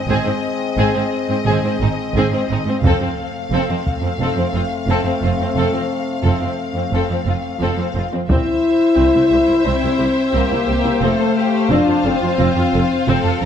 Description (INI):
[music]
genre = cinematic, epic orchestral film score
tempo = 88 BPM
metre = 4/4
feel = straight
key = unclear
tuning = A4 = 444 Hz
[part]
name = warm symphonic violin section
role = melody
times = 0.0-13.5 s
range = Eb5 to F5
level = -27 LUFS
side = left 4 dB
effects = none
[part]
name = mellow French horn section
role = sustained chords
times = 0.0-13.4 s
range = Ab3 to E4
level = -19 LUFS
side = left 3 dB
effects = none
[part]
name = warm symphonic violin section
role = second line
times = 0.1-13.4 s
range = C4 to A4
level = -25 LUFS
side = left 3 dB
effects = none
[part]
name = warm studio viola section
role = accompaniment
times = 0.1-13.5 s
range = C4 to C5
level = -24 LUFS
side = equal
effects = none
[part]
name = clear studio cello section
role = bass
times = 0.1-13.5 s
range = C2 to Ab2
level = -23 LUFS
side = right 4 dB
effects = none
[part]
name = clear symphonic double bass section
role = bass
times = 0.1-13.5 s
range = F1 to C2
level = -23 LUFS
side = right 4 dB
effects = none
[part]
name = taiko ensemble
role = drums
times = 2.8-4.2, 8.3-9.6 s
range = none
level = -20 LUFS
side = equal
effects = none
[sound]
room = moderate concert hall reverb, RT60 1.9 s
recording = none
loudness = -15 LUFS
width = side -8 dB against mid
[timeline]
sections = 0.0-8.3 A section; 8.3-13.5 B section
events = build-up 0.0-8.3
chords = 0.0 Ab; 2.8 F; 8.3 C; 11.0 F